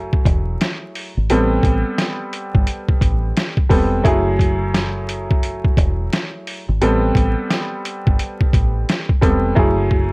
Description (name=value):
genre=hip hop, boom-bap hip-hop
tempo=87 BPM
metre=4/4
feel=swing 63% on 16ths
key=unclear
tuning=A4 = 444 Hz
part: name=clear upright piano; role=accompaniment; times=0.0-10.1 s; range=F#3 to A4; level=-20 LUFS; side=equal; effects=high-pass filter, low-pass filter
part: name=deep dub fingered electric bass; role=bass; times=0.0-10.1 s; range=E1 to A1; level=-20 LUFS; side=equal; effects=none
part: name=boom bap sampler-style drum kit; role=drums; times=0.1-10.1 s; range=hi-hat, kick drum, snare drum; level=-17 LUFS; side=equal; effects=none
room=light reverb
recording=worn, warbling old tape, cassette tape, vinyl crackle, warbly pitch drift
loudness=-15 LUFS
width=side -30 dB against mid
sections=0.0-10.1 A section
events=hi-hats muted 9.6-10.1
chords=0.0 F#m9; 1.3 Am9; 4.0 F#m9; 6.8 Am9; 9.6 F#m9